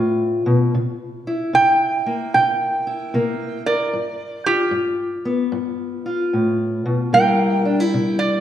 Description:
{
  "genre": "acoustic country blues, solo or duo",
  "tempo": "75 BPM",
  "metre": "4/4",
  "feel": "swing 66% on 8ths",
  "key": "unclear",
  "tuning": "A4 = 442 Hz",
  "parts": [
    { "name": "fingerpicked steel-string acoustic guitar", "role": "accompaniment", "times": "0.0-8.4 s", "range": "G2 to Bb4", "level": "-20 LUFS", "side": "left 1 dB", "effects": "none" },
    { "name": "metal-body resonator slide guitar", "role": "melody", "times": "1.5-8.4 s", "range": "G4 to G5", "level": "-18 LUFS", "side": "right 2 dB", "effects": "none" }
  ],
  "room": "wet recital hall reverb, RT60 1.6 s",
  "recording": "none",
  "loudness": "-17 LUFS",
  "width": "side -10 dB against mid",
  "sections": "0.0-8.4 A section",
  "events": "none",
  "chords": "0.0 G7 (rootless); 0.7 C7; 3.9 G7; 7.1 C7",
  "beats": "| 0.73 1.53 2.33 3.12 | 3.92 4.72 5.52 6.32 | 7.12 7.92"
}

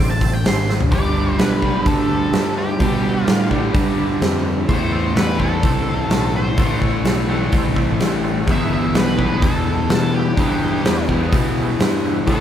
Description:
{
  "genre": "blues rock power trio and southern rock",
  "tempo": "127 BPM",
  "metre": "4/4",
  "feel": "straight",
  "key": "A minor",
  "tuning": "A4 = 440 Hz",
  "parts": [
    { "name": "octave-fuzz lead guitar", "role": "melody", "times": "0.0-12.4 s", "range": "G4 to C6", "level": "-26 LUFS", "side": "equal", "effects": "wah, distortion" },
    { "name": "overdriven tonewheel organ", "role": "sustained chords", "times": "0.0-12.4 s", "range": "A3 to A5", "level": "-31 LUFS", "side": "right 4 dB", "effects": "slow rotary speaker, chorus vibrato" },
    { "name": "growling fingered electric bass", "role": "bass", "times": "0.0-12.4 s", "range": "G1 to B2", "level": "-22 LUFS", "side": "equal", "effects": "overdrive" },
    { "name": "huge arena drum kit", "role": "drums", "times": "0.2-12.4 s", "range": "hi-hat, kick drum, snare drum, toms", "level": "-19 LUFS", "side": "equal", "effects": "none" },
    { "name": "overdriven electric guitar", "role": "riff", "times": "0.9-12.4 s", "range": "E2 to A3", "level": "-20 LUFS", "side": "left 1 dB", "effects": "none" }
  ],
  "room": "moderate large studio reverb, RT60 1.3 s",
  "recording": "band playing live in one room",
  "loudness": "-15 LUFS",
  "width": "side -10 dB against mid",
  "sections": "0.9-12.4 A section",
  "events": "drum fill 0.7; tonewheel organ fill 3.8-4.7",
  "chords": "0.0 Am; 0.9 G; 4.7 Am; 8.5 Em/G",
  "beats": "0.45 | 0.92 1.39 1.86 2.33 | 2.81 3.28 3.75 4.22 | 4.70 5.17 5.64 6.11 | 6.59 7.06 7.53 8.01 | 8.48 8.96 9.43 9.90 | 10.38 10.85 11.33 11.80 | 12.28"
}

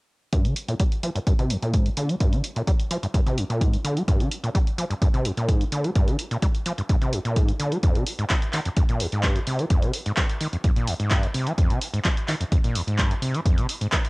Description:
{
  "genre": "acid house",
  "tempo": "128 BPM",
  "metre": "4/4",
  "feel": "straight",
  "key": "G phrygian",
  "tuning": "A4 = 440 Hz",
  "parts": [
    { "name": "overdriven acid bass", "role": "riff", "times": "0.3-14.0 s", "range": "Eb2 to G3", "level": "-25 LUFS", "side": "equal", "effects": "distortion, tape echo" },
    { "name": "electronic kick drum", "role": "drums", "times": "0.3-14.0 s", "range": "none", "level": "-21 LUFS", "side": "equal", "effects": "cassette tape" },
    { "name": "punchy analog drum machine", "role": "drums", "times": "0.3-14.1 s", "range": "handclaps, hi-hat", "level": "-30 LUFS", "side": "equal", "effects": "cassette tape" }
  ],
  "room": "light reverb",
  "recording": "home recording on cassette",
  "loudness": "-21 LUFS",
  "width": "side -28 dB against mid",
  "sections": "0.3-14.1 A section",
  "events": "filter sweep on acid bass 0.3-14.1",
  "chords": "none",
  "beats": "| 0.33 0.80 1.27 1.74 | 2.21 2.67 3.14 3.61 | 4.08 4.55 5.02 5.49 | 5.96 6.42 6.89 7.36 | 7.83 8.30 8.77 9.24 | 9.71 10.17 10.64 11.11 | 11.58 12.05 12.52 12.99 | 13.46 13.92"
}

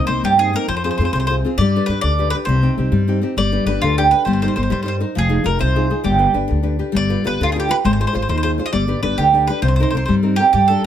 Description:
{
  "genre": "italian folk, Italian serenade",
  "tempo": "134 BPM (dotted quarters)",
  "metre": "6/8",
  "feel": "rubato",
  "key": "C minor",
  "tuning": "A4 = 440 Hz",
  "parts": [
    { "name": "mandolin", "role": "melody", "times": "0.0-10.8 s", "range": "F4 to Eb5", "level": "-19 LUFS", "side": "right 4 dB", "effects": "none" },
    { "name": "nylon-string guitar", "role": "accompaniment", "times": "0.0-10.8 s", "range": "C3 to C5", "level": "-20 LUFS", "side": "left 2 dB", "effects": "none" },
    { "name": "upright bass", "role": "bass", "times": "0.1-10.7 s", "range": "F1 to G2", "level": "-19 LUFS", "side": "equal", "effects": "none" }
  ],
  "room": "light reverb",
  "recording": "none",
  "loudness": "-15 LUFS",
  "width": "side -10 dB against mid",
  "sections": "0.0-10.5 A section",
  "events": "none",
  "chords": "0.0 Cm7; 0.7 Fm; 1.6 G; 2.5 Cm; 3.4 G; 4.3 Cm7/G; 5.2 Fm7; 6.1 G; 6.9 G7; 7.8 Ab6; 8.7 G; 9.6 Cm7",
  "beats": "0.24 | 0.69 1.13 | 1.57 2.02 | 2.47 2.92 | 3.37 3.82 | 4.28 4.72 | 5.17 5.61 | 6.05 6.50 | 6.95 7.40 | 7.85 8.29 | 8.73 9.18 | 9.63 10.09 | 10.55"
}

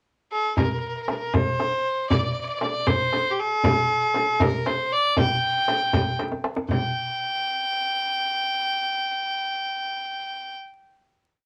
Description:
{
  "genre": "Persian modal ensemble",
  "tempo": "78 BPM (dotted quarters)",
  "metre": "6/8",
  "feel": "straight",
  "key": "G dastgah shur",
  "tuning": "A4 = 441 Hz",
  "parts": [
    { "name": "bright violin", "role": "melody", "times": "0.3-10.5 s", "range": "G4 to G5", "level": "-26 LUFS", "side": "equal", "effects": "none" },
    { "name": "frame drum", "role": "percussion", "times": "0.6-6.9 s", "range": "none", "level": "-29 LUFS", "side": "equal", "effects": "none" },
    { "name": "tombak", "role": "percussion", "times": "0.6-6.9 s", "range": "none", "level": "-28 LUFS", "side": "equal", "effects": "none" }
  ],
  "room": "wet small room reverb, RT60 0.5 s",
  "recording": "vinyl crackle",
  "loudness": "-24 LUFS",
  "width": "mono",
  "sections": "0.0-0.6 pickup bar; 0.6-6.7 A section; 6.7-9.8 final note",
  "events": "drum fill 6.2-6.7",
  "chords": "none",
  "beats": "| 0.57 1.34 | 2.10 2.87 | 3.64 4.40 | 5.17 5.94 | 6.70 7.47 | 8.24 9.01"
}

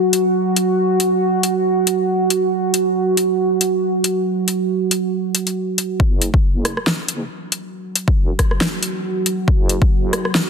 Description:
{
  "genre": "deep dubstep",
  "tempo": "138 BPM",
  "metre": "4/4",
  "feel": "swing 56% on 16ths, half-time",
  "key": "unclear",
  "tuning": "A4 = 442 Hz",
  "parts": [
    { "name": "deep dark ambient pad", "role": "sustained chords", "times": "0.0-10.5 s", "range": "F#4", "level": "-18 LUFS", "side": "right 2 dB", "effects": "chorus, built-in reverb" },
    { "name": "deep house drum kit", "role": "drums", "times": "0.1-10.4 s", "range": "hi-hat, rim click, snare drum", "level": "-19 LUFS", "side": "left 1 dB", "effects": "overdrive" },
    { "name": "deep soft wobble bass", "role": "bass", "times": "6.0-10.5 s", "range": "E1 to F#1", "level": "-27 LUFS", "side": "equal", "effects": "chorus, high-pass filter" },
    { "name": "electronic kick drum", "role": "drums", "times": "6.0-9.9 s", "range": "none", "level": "-15 LUFS", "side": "left 1 dB", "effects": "overdrive" }
  ],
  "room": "moderate lush hall reverb, RT60 2.5 s",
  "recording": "dense, heavily limited modern master",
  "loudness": "-16 LUFS",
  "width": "side -6 dB against mid",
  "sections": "0.0-6.0 A section; 6.0-10.5 B section",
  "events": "build-up 6.0-10.5; filter sweep on ambient pad 6.0-10.5",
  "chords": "none",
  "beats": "0.35 | 0.78 1.22 1.65 2.09 | 2.52 2.96 3.39 3.83 | 4.26 4.70 5.13 5.57 | 6.00 6.43 6.87 7.30 | 7.74 8.17 8.61 9.04 | 9.48 9.91 10.35"
}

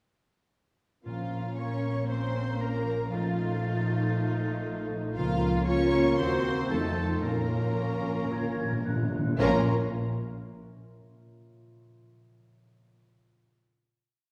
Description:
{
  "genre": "classical, dramatic, fast romantic movement for symphony orchestra",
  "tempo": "115 BPM",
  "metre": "4/4",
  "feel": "uneven beats",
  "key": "Bb minor",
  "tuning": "A4 = 440 Hz",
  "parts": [
    { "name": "rich symphonic violin section", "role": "melody", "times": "1.0-9.7 s", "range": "F5 to Db6", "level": "-44 LUFS", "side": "equal", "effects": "none" },
    { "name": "clear symphonic cello section", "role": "bass", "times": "1.0-9.7 s", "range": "F3 to Db4", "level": "-37 LUFS", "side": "equal", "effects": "none" },
    { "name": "bright oboe", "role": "second line", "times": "1.1-9.6 s", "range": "F4 to Db5", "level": "-43 LUFS", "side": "equal", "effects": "none" },
    { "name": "clear symphonic violin section", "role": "second line", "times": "1.1-9.7 s", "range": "A3 to Gb4", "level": "-40 LUFS", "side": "equal", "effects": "none" },
    { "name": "large flute ensemble", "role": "second line", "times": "1.1-9.7 s", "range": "Bb5 to A6", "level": "-45 LUFS", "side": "equal", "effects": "none" },
    { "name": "warm clarinet", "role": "second line", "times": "1.1-9.6 s", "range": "Db4 to Gb4", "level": "-38 LUFS", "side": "equal", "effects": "none" },
    { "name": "rich studio viola section", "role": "accompaniment", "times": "1.1-9.7 s", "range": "F4 to Db5", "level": "-39 LUFS", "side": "equal", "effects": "none" },
    { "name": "mellow French horn section", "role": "sustained chords", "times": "1.1-9.6 s", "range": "A3 to Gb4", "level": "-39 LUFS", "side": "equal", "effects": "none" },
    { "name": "concert harp", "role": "arpeggios", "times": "1.1-11.6 s", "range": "Bb2 to Db6", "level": "-37 LUFS", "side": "equal", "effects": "none" },
    { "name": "rich symphonic double bass section", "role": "bass", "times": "1.1-9.7 s", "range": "Bb1 to F2", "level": "-36 LUFS", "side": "equal", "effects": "none" },
    { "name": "timpani", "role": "percussion", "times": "1.1-1.8, 7.2-9.6 s", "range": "Bb2", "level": "-36 LUFS", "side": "equal", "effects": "none" }
  ],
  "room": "wet concert hall reverb, RT60 2.0 s",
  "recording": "heard from further back in the room",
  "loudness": "-28 LUFS",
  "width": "mono",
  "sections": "1.1-9.4 A section; 9.4-11.5 final chord",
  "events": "timpani fill 7.2-9.4",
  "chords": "1.1 Bbm; 3.1 F7/Bb; 5.2 Bbm/Db; 6.2 Cm7b5/Eb; 6.7 F7; 7.2 Bbm",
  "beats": "| 1.06 1.58 2.09 2.61 | 3.12 3.63 4.15 4.66 | 5.17 5.68 6.19 6.71 | 7.24 7.78 8.32 8.86 | 9.40 9.94 10.47 11.00"
}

